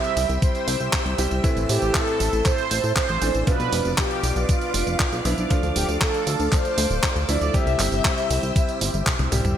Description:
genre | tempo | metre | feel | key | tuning
italo disco | 118 BPM | 4/4 | straight | unclear | A4 = 440 Hz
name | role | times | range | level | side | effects
mellow synth brass | melody | 0.0-9.0 s | F4 to E5 | -26 LUFS | right 1 dB | chorus, ping-pong delay
string machine, full ensemble | sustained chords | 0.0-9.6 s | A4 to E6 | -30 LUFS | equal | ensemble chorus
clear grand piano | stabs | 0.0-9.5 s | A2 to G4 | -29 LUFS | right 1 dB | none
clean 12-bit digital drum machine | drums | 0.0-9.5 s | handclaps, hi-hat, tambourine, toms | -26 LUFS | right 1 dB | small room ambience, gated reverb
chorused synth bass | bass | 0.2-9.5 s | D1 to A2 | -24 LUFS | equal | tube saturation
electronic kick drum | drums | 0.4-9.2 s | none | -23 LUFS | equal | small room ambience
room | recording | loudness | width
light reverb | none | -19 LUFS | side -10 dB against mid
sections
0.0-9.6 A section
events
drum fill 9.1-9.6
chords
0.0 C; 1.4 Am; 3.5 Bdim; 5.5 Dm; 7.5 C

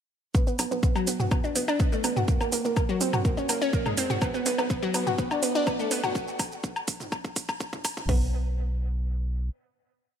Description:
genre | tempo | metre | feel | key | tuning
melodic techno | 124 BPM | 4/4 | straight | B phrygian | A4 = 440 Hz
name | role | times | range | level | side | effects
analog pluck | arpeggios | 0.3-8.3 s | F#3 to F#4 | -27 LUFS | equal | chorus, sidechain pumping, dub echo
house drum kit | drums | 0.3-8.2 s | hi-hat, kick drum | -26 LUFS | equal | none
house drum kit | drums | 0.3-8.1 s | hi-hat, shaker, toms, woodblock | -30 LUFS | equal | none
tight sequencer bass | bass | 0.6-9.5 s | F#1 to C#2 | -30 LUFS | equal | sidechain pumping, high-pass filter
room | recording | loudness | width
light reverb, digital ambience | high-pass filter | -24 LUFS | side -8 dB against mid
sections
0.3-8.1 build; 8.1-10.2 final note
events
build-up 0.3-8.1; filter sweep 0.3-8.1; drum fill 4.2-8.1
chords
0.3 Bm; 2.3 F#; 4.2 Bm; 6.2 N.C.

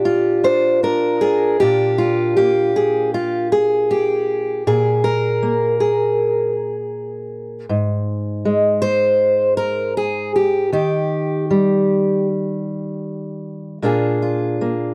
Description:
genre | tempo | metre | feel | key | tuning
folk, solo fingerstyle acoustic guitar | 78 BPM | 4/4 | straight | unclear | A4 = 440 Hz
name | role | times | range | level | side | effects
fingerpicked steel-string acoustic guitar | solo | 0.0-14.9 s | Ab2 to C5 | -18 LUFS | equal | none
room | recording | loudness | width
little or no reverb | dry, close 1970s-style studio recording | -18 LUFS | mono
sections
0.0-1.6 A section; 1.6-14.9 B section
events
none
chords
0.0 Bb; 7.7 N.C.; 10.7 Eb; 13.8 Bb7

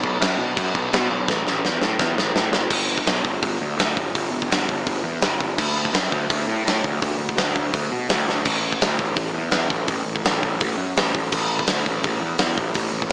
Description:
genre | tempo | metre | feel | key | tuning
punk rock | 167 BPM | 4/4 | straight | unclear | A4 = 441 Hz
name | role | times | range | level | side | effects
fuzz picked electric bass | bass | 0.0-13.1 s | F#1 to B2 | -24 LUFS | equal | overdrive
big rock drum kit | drums | 0.0-13.1 s | crash cymbal, hi-hat, kick drum, snare drum | -21 LUFS | equal | none
room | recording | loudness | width
little or no reverb | small speaker sound | -19 LUFS | side -39 dB against mid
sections
0.0-2.7 A section; 2.7-13.1 B section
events
drum fill 1.3-2.7, 8.3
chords
none

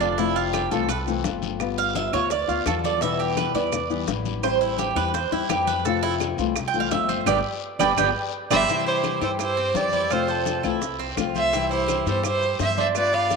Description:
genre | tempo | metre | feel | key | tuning
latin, Cuban son and guajira | 169 BPM | 4/4 | straight | C major | A4 = 440 Hz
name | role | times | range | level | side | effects
nylon-string guitar | accompaniment | 0.0-13.4 s | B2 to F4 | -27 LUFS | left 11 dB | none
Cuban tres | arpeggios | 0.0-13.4 s | C4 to G5 | -25 LUFS | right 8 dB | slapback echo
upright bass | bass | 0.0-13.4 s | F1 to G2 | -31 LUFS | equal | none
bongos | percussion | 0.0-13.4 s | none | -35 LUFS | left 12 dB | none
congas | percussion | 0.0-13.4 s | none | -35 LUFS | left 14 dB | none
guiro | percussion | 0.0-13.4 s | none | -39 LUFS | left 13 dB | none
maracas | percussion | 0.0-13.4 s | none | -37 LUFS | right 19 dB | none
claves | percussion | 0.5-13.1 s | none | -36 LUFS | right 14 dB | none
warm violin | melody | 8.5-13.4 s | A4 to F5 | -23 LUFS | right 1 dB | none
clear trumpet | second line | 8.5-13.4 s | F4 to D5 | -30 LUFS | right 9 dB | none
room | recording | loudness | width
wet spring reverb, RT60 2.1 s | 1960s-style stereo with parts hard left and right | -21 LUFS | side -4 dB against mid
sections
0.0-8.7 A section; 8.7-13.4 B section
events
Cuban tres solo 0.0-8.7; band accent 7.3-8.7; drum fill 7.6-8.7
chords
0.2 Fmaj7; 1.6 G7; 3.0 Em; 4.4 Am7; 5.9 Fmaj7; 7.3 G; 8.7 C; 10.1 Fmaj7; 11.5 Cmaj7

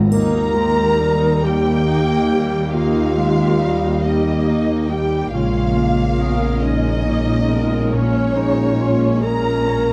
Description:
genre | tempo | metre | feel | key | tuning
cinematic, emotional film score for orchestra | 46 BPM (dotted quarters) | 6/8 | rubato | unclear | A4 = 440 Hz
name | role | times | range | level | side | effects
concert harp | arpeggios | 0.0-9.9 s | G#2 to B4 | -29 LUFS | equal | none
warm studio violin section | melody | 0.1-9.9 s | C#5 to A#5 | -33 LUFS | equal | none
wooden-headed alto flute | melody | 0.1-9.9 s | C#4 to A#4 | -24 LUFS | equal | none
warm clarinet | second line | 0.1-9.9 s | G3 to E#4 | -26 LUFS | equal | none
warm studio violin section | second line | 0.1-9.9 s | C#5 to A#5 | -30 LUFS | equal | none
rich studio viola section | accompaniment | 0.1-9.9 s | G3 to A#4 | -28 LUFS | equal | none
mellow French horn section | sustained chords | 0.1-9.9 s | G#3 to G4 | -28 LUFS | equal | none
clear studio cello section | bass | 0.1-9.9 s | D#2 to A#2 | -27 LUFS | equal | none
warm studio double bass section | bass | 0.1-9.9 s | A#1 to D#2 | -25 LUFS | equal | none
triangle | percussion | 0.1-1.8 s | none | -44 LUFS | equal | none
room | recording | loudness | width
moderate scoring stage reverb, RT60 2.0 s | close, detailed microphones | -17 LUFS | mono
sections
0.1-9.9 A section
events
none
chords
0.1 D#; 5.3 A#m7

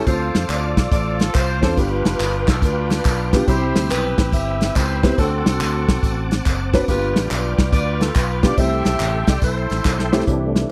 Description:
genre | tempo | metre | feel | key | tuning
uptempo gospel | 141 BPM | 4/4 | swing 66% on 8ths | C major | A4 = 439 Hz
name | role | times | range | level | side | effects
tonewheel organ | sustained chords | 0.0-10.7 s | E3 to E6 | -31 LUFS | equal | fast rotary speaker, chorus vibrato
warm saxophone section | melody | 0.1-10.2 s | C4 to E5 | -26 LUFS | equal | none
warm upright piano | accompaniment | 0.1-10.7 s | G2 to B4 | -25 LUFS | equal | none
fingered electric bass | bass | 0.1-10.6 s | F1 to F2 | -25 LUFS | equal | none
natural country drum kit | drums | 0.1-10.6 s | hi-hat, kick drum, snare drum | -20 LUFS | equal | none
tambourine and handclaps | percussion | 0.1-10.2 s | none | -32 LUFS | equal | none
mellow French horn section | sustained chords | 10.3-10.7 s | G3 to E4 | -33 LUFS | equal | none
room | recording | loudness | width
little or no reverb | dry, close 1970s-style studio recording | -19 LUFS | mono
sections
0.0-10.3 A section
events
drum fill 9.4-10.3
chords
0.1 Dm7; 1.8 G7; 3.5 Cmaj7; 5.2 D7; 6.9 G7; 8.6 C6

